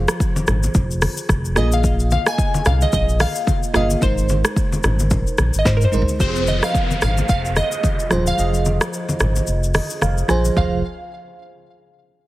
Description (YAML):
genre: afrobeats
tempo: 110 BPM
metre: 4/4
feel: swing 58% on 16ths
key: F minor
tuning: A4 = 442 Hz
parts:
  - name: glassy wavetable pluck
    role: melody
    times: 0.0-10.8 s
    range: Bb4 to Ab5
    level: -24 LUFS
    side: equal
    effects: chorus, digital delay
  - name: bell-like FM electric piano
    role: accompaniment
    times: 0.0-10.8 s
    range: F3 to Ab5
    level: -25 LUFS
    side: right 2 dB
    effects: chorus, tremolo
  - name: sub bass with octave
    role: bass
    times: 0.0-10.8 s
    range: Eb1 to Ab2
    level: -19 LUFS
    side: equal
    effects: none
  - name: afro-pop drum kit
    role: drums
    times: 0.1-10.7 s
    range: hi-hat, kick drum, rim click, shaker, snare drum, toms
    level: -20 LUFS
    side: equal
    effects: none
  - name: congas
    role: percussion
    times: 0.4-10.8 s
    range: none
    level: -26 LUFS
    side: left 1 dB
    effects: none
  - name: downlifter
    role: sound effects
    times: 6.2-10.6 s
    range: none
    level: -30 LUFS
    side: left 2 dB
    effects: none
room: digital ambience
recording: heavily compressed radio sound, multiband compression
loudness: -16 LUFS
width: side -16 dB against mid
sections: 0.0-6.2 A section; 6.2-10.6 B section; 10.6-12.3 C section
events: drum fill 5.7-6.2; kick muted 8.4-10.6; FM electric piano fill 9.5-10.6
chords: 0.0 Fm; 1.6 Bb7sus4; 4.0 Abadd9; 6.2 Fm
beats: 0.20 0.75 1.29 | 1.84 2.38 2.93 3.48 | 4.02 4.57 5.11 5.66 | 6.20 6.75 7.29 7.84 | 8.38 8.93 9.47 10.02 | 10.57